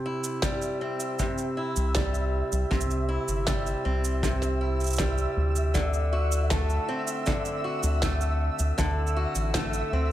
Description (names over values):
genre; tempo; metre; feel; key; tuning
folktronica; 79 BPM; 4/4; straight; C lydian; A4 = 440 Hz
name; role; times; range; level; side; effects
picked swing-style acoustic guitar; arpeggios; 0.0-10.1 s; C3 to F#4; -30 LUFS; equal; ping-pong delay
flickering grainy texture; texture; 0.2-10.1 s; E5 to E6; -35 LUFS; equal; built-in reverb
electronic shaker and snare drum; drums; 0.2-9.9 s; none; -33 LUFS; right 2 dB; studio reverb
kick drum; drums; 0.4-9.7 s; none; -30 LUFS; equal; studio reverb
round analog bass; bass; 1.8-10.1 s; G1 to D2; -27 LUFS; equal; none
room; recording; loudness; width
studio reverb; none; -24 LUFS; side -13 dB against mid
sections
0.0-10.1 A section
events
none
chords
0.0 C; 5.7 D7